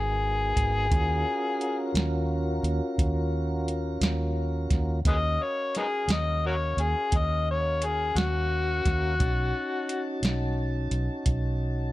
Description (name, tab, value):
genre	slow blues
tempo	58 BPM (dotted quarters)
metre	12/8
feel	straight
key	Eb minor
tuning	A4 = 439 Hz
part	overdriven harmonica	melody	0.0-10.2 s	Cb4 to Eb5	-28 LUFS	left 3 dB	slapback echo
part	mellow tonewheel organ	sustained chords	0.0-11.9 s	Cb4 to A5	-33 LUFS	equal	slow rotary speaker
part	vintage muted fingered electric bass	bass	0.0-11.9 s	Ab1 to Eb2	-28 LUFS	equal	none
part	soft vintage rhythm box	drums	0.6-11.4 s	hi-hat, kick drum, snare drum	-28 LUFS	right 1 dB	none
room	little or no reverb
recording	none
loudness	-24 LUFS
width	side -16 dB against mid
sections	0.0-11.9 A section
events	none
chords	0.0 Abm7; 0.9 Ebm7; 9.2 B7